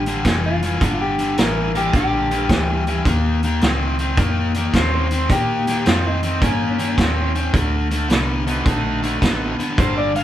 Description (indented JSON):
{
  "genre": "electric blues shuffle",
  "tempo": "107 BPM",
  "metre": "4/4",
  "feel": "swing 67% on 8ths",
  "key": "G minor",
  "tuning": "A4 = 442 Hz",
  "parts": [
    { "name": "electric guitar through a small old amp", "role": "melody", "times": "0.0-10.2 s", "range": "Db4 to F5", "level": "-24 LUFS", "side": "equal", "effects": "none" },
    { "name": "biting overdriven guitar", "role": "riff", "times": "0.0-10.2 s", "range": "G2 to C4", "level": "-21 LUFS", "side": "left 2 dB", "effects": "none" },
    { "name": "vintage muted fingered electric bass", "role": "bass", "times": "0.0-10.2 s", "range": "F1 to Bb2", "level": "-23 LUFS", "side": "equal", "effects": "none" },
    { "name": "vintage drum kit", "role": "drums", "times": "0.1-10.2 s", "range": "hi-hat, kick drum, snare drum", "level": "-21 LUFS", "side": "right 1 dB", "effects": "none" },
    { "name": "bright tonewheel organ", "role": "accompaniment", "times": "1.7-10.1 s", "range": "A3 to A4", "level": "-28 LUFS", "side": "right 3 dB", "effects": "slow rotary speaker, overdrive" }
  ],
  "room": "moderate studio reverb, RT60 0.6 s",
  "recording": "band playing live in one room",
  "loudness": "-16 LUFS",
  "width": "side -12 dB against mid",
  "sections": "0.0-10.2 A section",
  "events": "none",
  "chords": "0.0 Gm9; 3.1 Eb7; 7.5 D7b9"
}